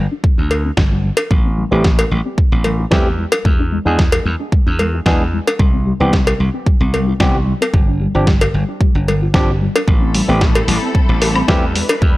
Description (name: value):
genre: nu-disco, nu disco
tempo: 112 BPM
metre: 4/4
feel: straight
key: A minor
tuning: A4 = 440 Hz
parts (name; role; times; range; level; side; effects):
- soft round pluck; arpeggios; 0.0-12.1 s; G3 to G#4; -24 LUFS; left 2 dB; ensemble chorus, sidechain pumping, analog delay
- slap bass; bass; 0.0-12.2 s; G1 to E2; -17 LUFS; equal; none
- electronic kick drum; drums; 0.2-12.1 s; none; -15 LUFS; equal; none
- cowbell; percussion; 0.5-12.0 s; none; -18 LUFS; left 1 dB; none
- dusty soul sampler-style drum kit; drums; 0.8-11.9 s; hi-hat, snare drum, woodblock; -20 LUFS; equal; none
- barky tine electric piano; accompaniment; 1.7-11.6 s; E3 to G#4; -21 LUFS; equal; overdrive, analog delay
- muted studio string section; sustained chords; 9.9-12.2 s; G3 to B4; -23 LUFS; left 2 dB; sidechain pumping
room: digital ambience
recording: dry, gritty hardware recording, transformer saturation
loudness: -12 LUFS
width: side -18 dB against mid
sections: 0.0-12.2 A section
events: filter sweep on synth arpeggio sound 0.0-12.2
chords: 0.0 G5; 1.3 Am7; 3.2 E7; 5.6 Cmaj7; 7.7 G7sus4; 9.9 Am7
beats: 0.24 0.77 | 1.31 1.85 2.38 2.92 | 3.45 3.99 4.52 5.06 | 5.60 6.13 6.67 7.20 | 7.74 8.27 8.81 9.35 | 9.88 10.42 10.95 11.49 | 12.02